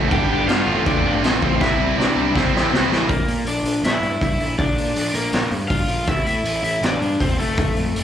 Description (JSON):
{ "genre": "punk rock", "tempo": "161 BPM", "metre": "4/4", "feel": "straight", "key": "unclear", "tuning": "A4 = 440 Hz", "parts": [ { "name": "distorted electric guitar", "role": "riff", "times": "0.0-3.1 s", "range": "G2 to F4", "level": "-24 LUFS", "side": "left 13 dB", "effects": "distortion" }, { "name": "distorted electric guitar", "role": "riff", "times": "0.0-3.1 s", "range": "G2 to F4", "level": "-23 LUFS", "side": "right 15 dB", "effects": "overdrive, slapback echo" }, { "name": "tight distorted guitar", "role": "riff", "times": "0.0-3.1 s", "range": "F2 to C4", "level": "-29 LUFS", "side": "right 3 dB", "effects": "none" }, { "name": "fuzz picked electric bass", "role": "bass", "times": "0.0-8.0 s", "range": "E1 to C3", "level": "-25 LUFS", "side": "equal", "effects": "overdrive" }, { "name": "crunchy overdriven guitar", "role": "melody", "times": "0.1-8.0 s", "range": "A3 to G5", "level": "-23 LUFS", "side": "left 2 dB", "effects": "slapback echo" }, { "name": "raw garage drum kit", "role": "drums", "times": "0.1-8.0 s", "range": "crash cymbal, hi-hat, kick drum, snare drum", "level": "-21 LUFS", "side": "equal", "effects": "none" } ], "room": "little or no reverb", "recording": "live gig heard through the venue's PA, club reverb", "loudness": "-17 LUFS", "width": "side -9 dB against mid", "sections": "0.0-3.1 A section; 3.1-8.0 B section", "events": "drum fill 1.6-3.1; half time 3.1-8.0", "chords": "0.1 G; 0.7 F; 1.6 C; 3.1 Bb; 6.1 Am; 7.4 F", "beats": "| 0.11 0.48 0.85 1.23 | 1.60 1.97 2.34 2.72 | 3.09 3.46 3.83 4.21 | 4.58 4.96 5.33 5.71 | 6.08 6.46 6.83 7.21 | 7.58 7.96" }